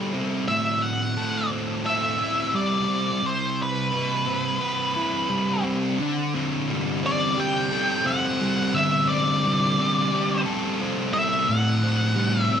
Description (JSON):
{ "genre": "rock", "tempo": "87 BPM", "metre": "4/4", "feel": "straight", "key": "D mixolydian", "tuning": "A4 = 440 Hz", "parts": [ { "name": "fuzz guitar", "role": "riff", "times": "0.0-12.6 s", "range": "A2 to B4", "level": "-24 LUFS", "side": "equal", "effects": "distortion, wide subtle chorus" }, { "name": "octave-fuzz lead guitar", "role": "melody", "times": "0.5-12.6 s", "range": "B4 to G5", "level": "-24 LUFS", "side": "equal", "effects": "distortion, analog delay" } ], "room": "light reverb", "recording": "none", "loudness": "-21 LUFS", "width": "side -8 dB against mid", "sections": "0.0-6.0 A section; 6.0-12.6 B section", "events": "none", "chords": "0.5 Am7; 3.2 Cmaj7; 6.0 D7sus4; 11.5 Am7" }